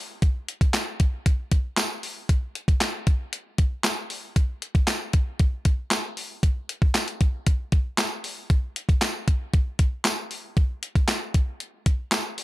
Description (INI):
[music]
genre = pop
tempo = 116 BPM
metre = 4/4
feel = straight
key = none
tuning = none
[part]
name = crisp 8-bit digital drum machine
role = drums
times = 0.2-12.4 s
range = handclaps, hi-hat, kick drum, snare drum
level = -22 LUFS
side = equal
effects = none
[part]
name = tambourine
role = percussion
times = 0.7-12.2 s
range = none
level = -34 LUFS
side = right 4 dB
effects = none
[sound]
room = little or no reverb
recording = dark, warm production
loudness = -22 LUFS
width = side -17 dB against mid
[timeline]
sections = 0.2-12.4 A section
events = drop 0.2-12.4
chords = none